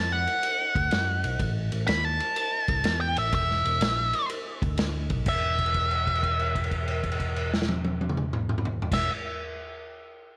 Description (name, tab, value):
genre	blues rock power trio and southern rock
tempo	124 BPM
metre	4/4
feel	swing 67% on 8ths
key	unclear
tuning	A4 = 440 Hz
part	octave-fuzz lead guitar	melody	0.0-9.1 s	E5 to B5	-30 LUFS	equal	distortion, tape echo
part	picked electric bass	bass	0.0-9.1 s	E1 to F#2	-32 LUFS	equal	none
part	vintage drum kit	drums	0.3-9.0 s	crash cymbal, kick drum, ride cymbal, snare drum, toms	-32 LUFS	equal	none
room	light reverb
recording	none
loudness	-27 LUFS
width	mono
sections	0.0-5.3 A section; 5.3-9.1 B section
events	lead electric guitar solo 0.0-5.3; held note 5.3-8.9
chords	0.0 B5; 1.4 A5; 3.3 N.C.; 4.3 Bm; 5.3 N.C.